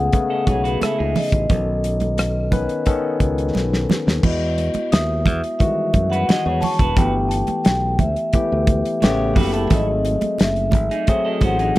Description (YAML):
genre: lush 1970s-style soul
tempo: 88 BPM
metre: 4/4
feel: straight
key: E major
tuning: A4 = 439 Hz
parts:
  - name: vibraphone with soft mallets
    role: melody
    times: 0.0-11.8 s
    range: D#5 to A5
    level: -23 LUFS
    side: equal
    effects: none
  - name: barky tine electric piano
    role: accompaniment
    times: 0.0-11.8 s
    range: C#3 to B4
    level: -24 LUFS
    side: left 4 dB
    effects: overdrive
  - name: fingered electric bass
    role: bass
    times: 0.0-11.7 s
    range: E1 to F#2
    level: -22 LUFS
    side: equal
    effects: none
  - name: worn celesta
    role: texture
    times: 0.0-9.1 s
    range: G#5 to D#6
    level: -35 LUFS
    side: equal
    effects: none
  - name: damped 70s drum kit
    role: drums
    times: 0.1-11.8 s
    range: crash cymbal, hi-hat, kick drum, rim click, snare drum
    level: -18 LUFS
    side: equal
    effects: none
  - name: congas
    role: percussion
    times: 0.1-11.8 s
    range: none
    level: -26 LUFS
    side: right 5 dB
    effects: none
  - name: electric guitar through a small old amp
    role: riff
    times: 0.3-1.5, 6.1-11.8 s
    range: D#4 to D#5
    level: -28 LUFS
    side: right 5 dB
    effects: none
room: small room ambience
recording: none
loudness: -16 LUFS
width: side -17 dB against mid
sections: 0.0-4.2 A section; 4.2-11.8 B section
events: drum fill 3.6-4.2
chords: 0.0 Amaj9; 1.5 B9; 4.2 Emaj9; 7.0 G69; 9.0 A9; 9.7 G#7b9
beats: 0.13 0.82 | 1.50 2.18 2.87 3.55 | 4.24 4.92 5.60 6.29 | 6.97 7.66 8.34 9.02 | 9.71 10.39 11.07 11.76